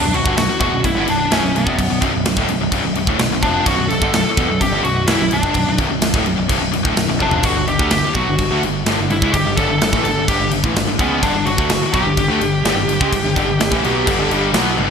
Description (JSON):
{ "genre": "heavy metal", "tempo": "127 BPM", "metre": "4/4", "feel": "straight", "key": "B minor", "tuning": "A4 = 441 Hz", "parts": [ { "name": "high-gain lead guitar", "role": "melody", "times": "0.0-14.5 s", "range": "B3 to A4", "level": "-20 LUFS", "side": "equal", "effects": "distortion" }, { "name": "heavy high-gain guitar", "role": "riff", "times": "0.0-14.9 s", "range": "B1 to C#4", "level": "-22 LUFS", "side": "left 11 dB", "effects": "distortion" }, { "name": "sludgy distorted guitar", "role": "riff", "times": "0.0-14.9 s", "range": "B1 to C#4", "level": "-24 LUFS", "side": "right 11 dB", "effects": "overdrive" }, { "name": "tight distorted guitar", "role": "riff", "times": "0.0-14.9 s", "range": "B1 to C#4", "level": "-24 LUFS", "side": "equal", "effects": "distortion" }, { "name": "growling picked electric bass", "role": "bass", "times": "0.0-14.9 s", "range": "B0 to D2", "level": "-24 LUFS", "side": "right 1 dB", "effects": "overdrive" }, { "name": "tight metal drum kit", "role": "drums", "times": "0.1-14.9 s", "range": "crash cymbal, kick drum, snare drum, splash cymbal, toms", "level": "-20 LUFS", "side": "equal", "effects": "gated reverb" } ], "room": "moderate lush hall reverb, RT60 1.8 s, small room ambience", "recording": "bright 1980s-style digital production", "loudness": "-14 LUFS", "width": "side -6 dB against mid", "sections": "0.0-14.9 A section", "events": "drum fill 7.2", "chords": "0.0 Bm; 7.4 G5" }